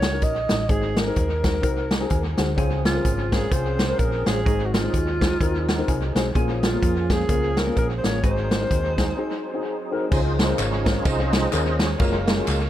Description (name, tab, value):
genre	uptempo gospel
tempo	127 BPM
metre	4/4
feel	swing 59% on 8ths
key	Db major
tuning	A4 = 441 Hz
part	mellow alto saxophone	melody	0.0-9.6 s	F4 to Eb5	-28 LUFS	right 1 dB	dub echo
part	hollow-body short-scale fingered electric bass	bass	0.0-12.7 s	Gb1 to F2	-26 LUFS	equal	none
part	swinging big-band drum kit	drums	0.0-12.6 s	crash cymbal, hi-hat, kick drum, ride cymbal, snare drum	-23 LUFS	equal	dub echo
part	dark upright piano	accompaniment	0.1-12.6 s	Ab2 to Ab5	-28 LUFS	left 4 dB	dub echo
part	percussive tonewheel organ	sustained chords	2.6-12.7 s	F3 to Eb5	-29 LUFS	right 3 dB	slow rotary speaker, chorus vibrato
part	tambourine and handclaps	percussion	10.1-12.6 s	none	-34 LUFS	left 3 dB	dub echo
room	light reverb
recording	echo-heavy mix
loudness	-20 LUFS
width	side -12 dB against mid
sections	0.0-10.1 A section; 10.1-12.7 B section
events	upright piano fill 1.9-2.6, 5.4-6.3; break 9.2-10.1; tonewheel organ solo 10.1-12.7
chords	0.0 Ebm7; 0.7 Ab7; 2.6 Dbmaj7; 4.5 Ab7; 6.3 Bbm7; 8.2 Ab7; 10.1 Dbmaj7; 12.0 Gbmaj7